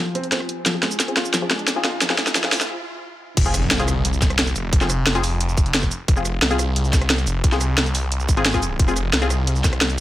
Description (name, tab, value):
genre	dark technical drum and bass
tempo	177 BPM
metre	4/4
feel	straight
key	F minor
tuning	A4 = 440 Hz
part	deep dark ambient pad	sustained chords	0.1-3.3 s	F4 to Ab5	-38 LUFS	left 2 dB	none
part	felt-muted upright piano	arpeggios	0.0-2.6 s	F3 to F4	-28 LUFS	equal	sidechain pumping, tape echo
part	riser and impact	sound effects	0.5-4.7 s	none	-30 LUFS	equal	none
part	drum and bass drum kit	drums	0.2-10.0 s	crash cymbal, hi-hat, rim click, shaker, snare drum	-20 LUFS	equal	none
part	filtered dub chord stab	stabs	0.7-9.3 s	C4 to Ab4	-27 LUFS	left 3 dB	chorus, tape echo
part	snarling distorted saw bass	bass	3.4-10.0 s	F1 to C2	-22 LUFS	equal	distortion, overdrive
part	electronic kick drum	drums	3.4-9.7 s	none	-18 LUFS	equal	none
room	light reverb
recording	high-pass filter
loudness	-17 LUFS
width	side -14 dB against mid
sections	0.0-3.4 A section; 3.4-10.0 B section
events	build-up 0.0-3.4; drum fill 0.0-2.7; filter sweep on synth stab 0.0-3.4; riser 0.5-2.7; break 2.7-3.4; drop 3.4-10.0; impact 3.4-4.7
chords	0.0 Fm